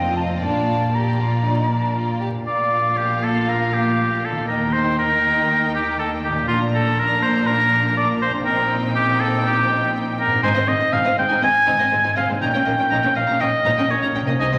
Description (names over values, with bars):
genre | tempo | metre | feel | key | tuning
classical | 121 BPM | 4/4 | straight | Bb major | A4 = 440 Hz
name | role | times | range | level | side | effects
rich symphonic violin section | melody | 0.0-14.6 s | C5 to Bb5 | -33 LUFS | equal | none
mellow silver concert flute | second line | 0.0-2.2 s | G5 to Bb5 | -27 LUFS | equal | none
warm symphonic violin section | second line | 0.0-14.6 s | Ab3 to G4 | -31 LUFS | equal | none
rich symphonic viola section | accompaniment | 0.0-14.6 s | Bb3 to Db4 | -30 LUFS | equal | none
dark French horn section | sustained chords | 0.0-1.6 s | F3 to D4 | -34 LUFS | equal | none
concert harp | arpeggios | 0.0-14.6 s | F2 to Eb5 | -34 LUFS | equal | none
rich symphonic cello section | bass | 0.0-14.6 s | F2 to Eb3 | -31 LUFS | equal | none
warm symphonic double bass section | bass | 0.0-14.4 s | F1 to Eb2 | -29 LUFS | equal | none
clear oboe | second line | 2.5-14.5 s | F4 to Ab5 | -21 LUFS | equal | none
room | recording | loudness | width
wet concert hall reverb, RT60 2.2 s | vinyl crackle | -19 LUFS | mono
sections
0.0-2.5 A section; 2.5-14.6 A section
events
none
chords
0.4 Bb; 4.5 Eb; 6.5 Bb; 8.5 Cm7/Bb; 10.4 Ab; 12.4 Eb7/Bb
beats
| 0.42 0.94 1.45 1.97 | 2.48 2.98 3.48 3.98 | 4.49 4.99 5.49 5.98 | 6.48 6.97 7.47 7.97 | 8.46 8.96 9.45 9.94 | 10.43 10.93 11.42 11.92 | 12.41 12.91 13.41 13.90 | 14.39